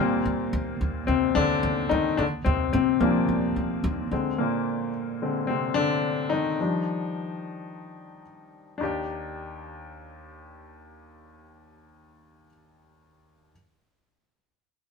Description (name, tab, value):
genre	pop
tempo	109 BPM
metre	4/4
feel	straight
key	Eb major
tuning	A4 = 440 Hz
part	clear baby grand piano	accompaniment	0.0-13.5 s	Eb2 to G4	-25 LUFS	left 3 dB	none
part	upright bass	bass	0.0-4.3 s	Eb2	-29 LUFS	equal	none
room	moderate studio ambience, RT60 0.4 s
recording	band playing live in one room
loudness	-24 LUFS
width	side -4 dB against mid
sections	0.0-8.8 A section; 8.8-11.0 B section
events	grand piano solo 0.0-8.8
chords	0.0 Eb6; 2.2 Ebmaj7; 4.1 Bb7/Eb; 6.6 Ebmaj7